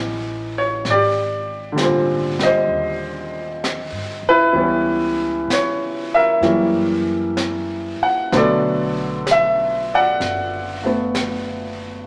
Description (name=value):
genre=jazz ballad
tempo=64 BPM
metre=4/4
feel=swing 67% on 8ths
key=unclear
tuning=A4 = 445 Hz
part: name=clear grand piano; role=accompaniment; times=0.0-12.1 s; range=Bb2 to F#5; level=-20 LUFS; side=equal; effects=none
part: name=upright bass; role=bass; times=0.0-12.0 s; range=F#1 to C#3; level=-33 LUFS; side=equal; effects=none
part: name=jazz brush drum kit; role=drums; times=0.8-12.1 s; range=brushed snare drum, hi-hat, snare drum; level=-31 LUFS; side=equal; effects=none
room=wet large studio reverb, RT60 1.2 s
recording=none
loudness=-19 LUFS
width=mono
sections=0.0-12.1 A section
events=none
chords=0.0 A7#11; 0.9 Abmaj9#11; 4.6 C#m7b5; 6.4 F#7b9; 8.3 Bm7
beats=| 0.85 1.78 2.70 3.63 | 4.56 5.49 6.43 7.38 | 8.33 9.28 10.22 11.15